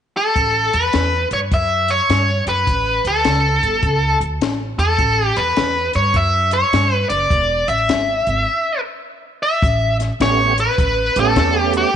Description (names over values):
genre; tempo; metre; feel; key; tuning
electric blues shuffle; 104 BPM; 4/4; swing 64% on 8ths; A mixolydian; A4 = 441 Hz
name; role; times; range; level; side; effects
smooth overdriven lead guitar; melody; 0.2-12.0 s; G4 to E5; -16 LUFS; equal; slapback echo
upright bass; bass; 0.4-11.8 s; E1 to G2; -21 LUFS; right 1 dB; none
compact cocktail drum kit; drums; 0.4-11.8 s; hi-hat, kick drum, snare drum; -22 LUFS; left 3 dB; none
tonewheel organ; accompaniment; 10.2-11.9 s; A3 to G4; -21 LUFS; right 13 dB; slow rotary speaker, overdrive, chorus vibrato
room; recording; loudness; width
light reverb, small room ambience; 1960s-style stereo, nothing above 10.3 kHz; -15 LUFS; side -8 dB against mid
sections
0.4-9.6 A section; 9.6-12.0 B section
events
break 8.5-9.6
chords
0.4 A7; 7.3 E; 9.6 A9